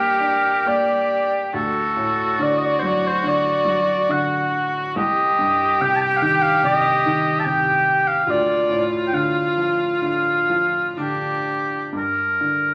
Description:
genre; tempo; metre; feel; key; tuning
celtic folk, Celtic slow air; 61-74 BPM; 4/4; rubato; unclear; A4 = 440 Hz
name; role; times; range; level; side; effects
clear oboe; melody; 0.0-12.7 s; G4 to A5; -22 LUFS; equal; none
bright viola; second line; 0.0-11.9 s; D4 to G4; -24 LUFS; equal; none
felt-muted upright piano; accompaniment; 0.0-12.7 s; C2 to D4; -29 LUFS; equal; none
room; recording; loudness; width
wet large studio reverb, RT60 1.3 s; vinyl crackle; -20 LUFS; mono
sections
0.0-11.9 A section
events
none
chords
0.0 Gm; 1.5 D; 5.0 Cm; 8.3 Dm; 11.9 Gm

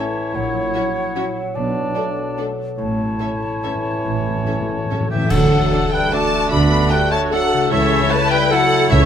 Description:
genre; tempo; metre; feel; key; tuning
classical, orchestral ballroom waltz; 135-163 BPM; 3/4; rubato; D major; A4 = 439 Hz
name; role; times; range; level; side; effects
rich studio violin section; melody; 0.0-9.1 s; D5 to B5; -23 LUFS; left 1 dB; none
hollow concert flute; second line; 0.0-9.1 s; E5 to B5; -26 LUFS; left 1 dB; none
mellow clarinet; second line; 0.0-9.1 s; D4 to E4; -28 LUFS; left 2 dB; none
warm oboe; second line; 0.0-9.1 s; G4 to D5; -25 LUFS; right 2 dB; none
warm studio violin section; second line; 0.0-8.6 s; D4 to A4; -30 LUFS; left 1 dB; none
mellow bassoon; accompaniment; 0.0-9.1 s; E3 to A3; -27 LUFS; right 2 dB; none
rich studio viola section; accompaniment; 0.0-9.1 s; C#4 to C#5; -24 LUFS; right 2 dB; none
mellow French horn section; sustained chords; 0.0-9.1 s; E3 to E4; -26 LUFS; left 5 dB; none
concert harp; arpeggios; 0.0-9.1 s; A2 to C#5; -27 LUFS; left 9 dB; none
dark studio cello section; bass; 0.3-9.1 s; A2 to D3; -24 LUFS; right 2 dB; none
rich studio double bass section; bass; 0.3-9.1 s; A1 to D2; -23 LUFS; right 3 dB; none
timpani; percussion; 2.8-5.9 s; A2 to D3; -26 LUFS; left 1 dB; none
clash cymbals and concert bass drum; percussion; 5.3-6.1 s; none; -27 LUFS; equal; none
room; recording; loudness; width
light reverb; close, detailed microphones; -16 LUFS; side -9 dB against mid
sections
0.0-5.3 A section; 5.3-9.1 B section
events
timpani fill 2.8-5.3; band accent 5.3-5.7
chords
0.3 F#7/A#; 1.6 Bm7; 2.8 A; 5.3 D; 7.7 A/C#

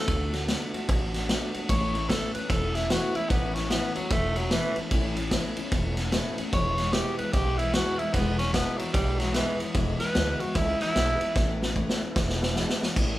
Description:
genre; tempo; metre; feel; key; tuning
rockabilly; 149 BPM; 4/4; swing 63% on 8ths; A major; A4 = 440 Hz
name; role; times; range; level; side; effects
breathy tenor saxophone; melody; 0.0-11.6 s; E3 to C#5; -29 LUFS; equal; none
picked steel-string acoustic guitar; accompaniment; 0.0-13.2 s; E2 to F#4; -32 LUFS; left 2 dB; none
upright bass; bass; 0.1-13.2 s; E1 to D2; -31 LUFS; equal; none
vintage drum kit; drums; 0.1-13.1 s; crash cymbal, kick drum, ride cymbal, snare drum; -28 LUFS; equal; none
room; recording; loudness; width
light reverb; band playing live in one room; -24 LUFS; side -15 dB against mid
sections
0.0-13.0 A section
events
tenor saxophone solo 0.0-13.0; drum fill 11.4-13.0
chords
0.1 D; 1.7 A; 6.5 E; 11.4 A; 12.2 E

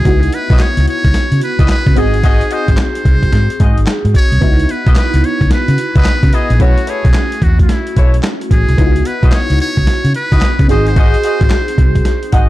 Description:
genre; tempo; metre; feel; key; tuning
R&B, new jack swing; 110 BPM; 4/4; swing 64% on 16ths; C# minor; A4 = 439 Hz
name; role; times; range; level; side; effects
trumpet with metal mute; melody; 0.0-12.5 s; E4 to C#5; -20 LUFS; equal; tape echo
FM electric piano with soft pad layer; accompaniment; 0.0-12.5 s; A3 to F#5; -19 LUFS; equal; chorus, phaser
vintage muted fingered electric bass; bass; 0.0-12.5 s; G#1 to C#3; -13 LUFS; equal; none
boom bap sampler-style drum kit; drums; 0.1-12.5 s; handclaps, hi-hat, kick drum, snare drum; -12 LUFS; equal; none
warm horn section; stabs; 0.5-12.5 s; E4 to D#5; -23 LUFS; left 2 dB; none
room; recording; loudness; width
little or no reverb; dark, warm production; -10 LUFS; side -16 dB against mid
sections
0.0-12.5 A section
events
FM electric piano fill 12.1-12.5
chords
0.1 C#m11; 2.0 G#7; 4.4 C#m11; 6.6 B9sus4; 8.8 C#m11; 10.7 G#7

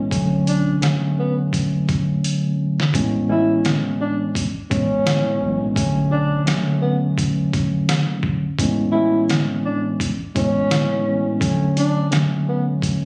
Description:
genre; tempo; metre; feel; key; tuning
hip hop, boom-bap hip-hop; 85 BPM; 4/4; swing 56% on 16ths; B dorian; A4 = 438 Hz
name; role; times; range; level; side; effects
breathy tenor saxophone; melody; 0.0-12.7 s; B3 to E4; -26 LUFS; equal; high-pass filter, low-pass filter, digital delay
tine electric piano; accompaniment; 0.0-13.1 s; A2 to C#4; -22 LUFS; equal; cassette tape, high-pass filter, low-pass filter
round analog bass; bass; 0.1-6.4 s; A1 to B1; -29 LUFS; equal; none
trip hop sampler-style drum kit; drums; 0.1-13.0 s; hi-hat, kick drum, rim click, snare drum; -24 LUFS; equal; none
room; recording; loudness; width
light reverb; recorded on a phone in the room, studio reverb, compression; -20 LUFS; mono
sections
0.0-13.1 A section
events
drum fill 2.2-2.9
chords
0.1 Bm7; 2.9 Amaj9; 5.8 Bm7; 8.6 Amaj9; 11.4 Dmaj7

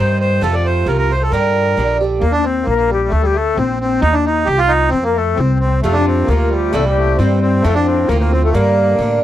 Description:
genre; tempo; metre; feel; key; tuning
celtic folk, Celtic polka; 133 BPM; 2/4; swing 54% on 8ths; unclear; A4 = 440 Hz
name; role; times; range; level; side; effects
accordion; melody; 0.0-9.2 s; G3 to D5; -18 LUFS; right 2 dB; none
hollow concert flute; second line; 0.0-9.2 s; C4 to D5; -20 LUFS; left 8 dB; none
Irish bouzouki; accompaniment; 0.0-2.2, 5.8-9.2 s; G2 to G4; -19 LUFS; right 4 dB; none
upright bass; bass; 0.0-9.2 s; Bb1 to A2; -17 LUFS; equal; none
room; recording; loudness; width
little or no reverb; dry, close 1970s-style studio recording; -13 LUFS; side -12 dB against mid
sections
0.0-2.2 A section; 2.2-9.2 A section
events
none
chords
0.4 F; 1.3 Gm; 2.2 Eb5; 3.1 Bbmaj13; 4.0 Cmadd11; 4.9 F; 6.7 C7; 7.6 F; 8.6 Gm

